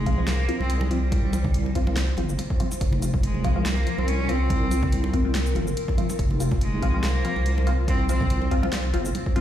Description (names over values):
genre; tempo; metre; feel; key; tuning
deep dubstep; 142 BPM; 4/4; swing 54% on 16ths, half-time; F minor; A4 = 440 Hz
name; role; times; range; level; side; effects
bright cello; melody; 0.0-8.5 s; G3 to Db4; -31 LUFS; equal; dub echo
granular cloud pad; sustained chords; 0.0-9.4 s; F4 to C5; -34 LUFS; equal; built-in reverb
deep soft wobble bass; bass; 0.0-9.1 s; F1 to C2; -24 LUFS; equal; chorus, tube saturation
filtered dub chord stab; stabs; 0.1-9.4 s; F3 to F4; -30 LUFS; left 2 dB; phaser, lush chorus, vintage 12-bit sampler grit, dub echo
deep house drum kit; drums; 0.1-9.4 s; hi-hat, shaker, snare drum; -33 LUFS; equal; none
electronic kick drum; drums; 0.1-9.3 s; none; -25 LUFS; equal; none
congas; percussion; 0.1-9.4 s; none; -33 LUFS; right 3 dB; dub echo
room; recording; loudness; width
light reverb, digital ambience; played on a big sound system in a bare room, large studio reverb; -21 LUFS; side -11 dB against mid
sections
0.0-9.4 A section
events
filter sweep on synth stab 0.0-9.4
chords
0.0 F5